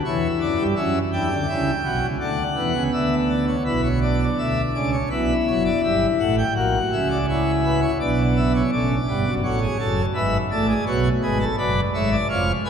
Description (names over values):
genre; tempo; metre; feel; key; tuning
classical, baroque-style 3-part fugue for pipe organ; 83 BPM; 4/4; straight; B minor from 3.7 s; A4 = 440 Hz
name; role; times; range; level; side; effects
pipe organ, plenum; solo; 0.0-12.7 s; E#1 to G#5; -19 LUFS; equal; none
room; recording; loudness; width
wet cathedral reverb, RT60 4.4 s; minimal, uncompressed stereo recording; -19 LUFS; side -7 dB against mid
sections
0.0-3.7 A section; 3.7-12.7 B section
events
none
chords
0.0 C#dim; 0.8 F#5; 2.2 Bm; 5.1 C#m7b5; 6.6 F#7/A#; 8.0 Bm; 9.4 F#m